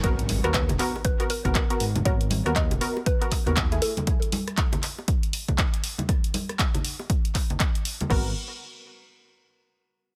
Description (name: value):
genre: deep house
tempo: 119 BPM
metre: 4/4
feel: swing 60% on 16ths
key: G# minor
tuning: A4 = 442 Hz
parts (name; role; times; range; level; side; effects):
- mallet-like synth pluck; melody; 0.0-4.3 s; A4 to D#5; -35 LUFS; equal; chorus, phaser, digital delay
- filtered dub chord stab; stabs; 0.0-3.9, 8.1-8.3 s; A3 to A#4; -32 LUFS; equal; chorus, cassette tape, sidechain pumping, digital delay
- smooth synth bass; bass; 0.0-3.8, 8.1-8.3 s; D#1 to D#2; -29 LUFS; equal; sidechain pumping
- electronic kick drum; drums; 0.0-8.2 s; none; -27 LUFS; equal; overdrive
- punchy analog drum machine; drums; 0.0-8.2 s; crash cymbal, handclaps, hi-hat, rim click; -32 LUFS; equal; none
- impact; sound effects; 0.0-2.1 s; none; -38 LUFS; equal; none
- congas and bongos; percussion; 0.3-8.1 s; none; -35 LUFS; equal; none
room: little or no reverb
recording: none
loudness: -25 LUFS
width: mono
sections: 0.0-8.1 A section; 8.1-10.1 B section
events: impact 0.0-2.1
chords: 0.0 G#m9; 3.8 N.C.; 8.1 G#m9